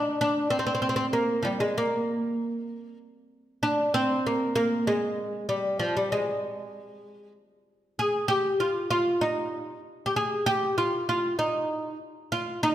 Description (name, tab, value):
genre	turkish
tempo	194 BPM (eighths)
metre	7/8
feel	straight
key	unclear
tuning	A4 = 439 Hz
part	oud	solo	0.0-12.7 s	F3 to Ab4	-25 LUFS	equal	none
room	wet recital hall reverb, RT60 1.6 s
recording	none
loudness	-24 LUFS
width	side -12 dB against mid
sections	0.0-12.7 A section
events	none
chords	none